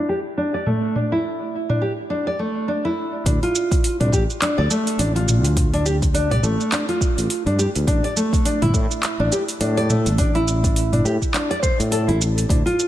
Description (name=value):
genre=organic downtempo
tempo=104 BPM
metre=4/4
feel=swing 58% on 16ths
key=D minor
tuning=A4 = 440 Hz
part: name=nylon-string guitar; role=arpeggios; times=0.0-12.9 s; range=A3 to D5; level=-21 LUFS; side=equal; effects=tape echo
part: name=afro-pop drum kit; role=drums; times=0.7-12.9 s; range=handclaps, hi-hat, shaker, toms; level=-24 LUFS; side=right 1 dB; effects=none
part: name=sustaining fretless electric bass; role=bass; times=3.3-12.6 s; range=G1 to A2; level=-20 LUFS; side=equal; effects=sidechain pumping
part: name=electronic kick drum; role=drums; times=3.3-12.6 s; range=none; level=-20 LUFS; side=equal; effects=none
room=light reverb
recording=low-pass filter, lossy compression artefacts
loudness=-18 LUFS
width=side -13 dB against mid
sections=0.0-3.3 A section; 3.3-12.9 B section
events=none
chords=0.0 A5; 3.3 Dm; 7.9 A5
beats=0.38 | 0.96 1.53 2.11 2.69 | 3.26 3.84 4.42 5.00 | 5.57 6.15 6.73 7.30 | 7.88 8.46 9.03 9.61 | 10.19 10.76 11.34 11.92 | 12.49